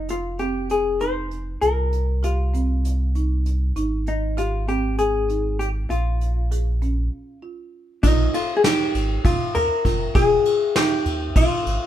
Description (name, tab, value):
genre	progressive instrumental, band music in an uneven meter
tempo	197 BPM (eighths)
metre	7/8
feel	straight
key	unclear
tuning	A4 = 439 Hz
part	vintage hollow-body jazz guitar	melody	0.0-11.9 s	Eb4 to C5	-22 LUFS	left 3 dB	none
part	warm sub bass	bass	0.0-11.8 s	F1 to Eb2	-23 LUFS	equal	none
part	folk marimba with medium mallets	arpeggios	0.1-11.9 s	C4 to Ab4	-29 LUFS	right 4 dB	none
part	vintage brush drum kit	drums	0.1-11.8 s	hi-hat, kick drum, ride cymbal, snare drum	-22 LUFS	equal	none
room	light reverb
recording	band playing live in one room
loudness	-19 LUFS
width	side -11 dB against mid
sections	0.0-8.0 A section; 8.0-11.9 B section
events	break 7.1-8.0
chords	0.0 F5; 1.6 C7sus4; 3.8 Abmaj7; 5.9 Bbm7; 8.0 Bbsus4; 10.2 Fm9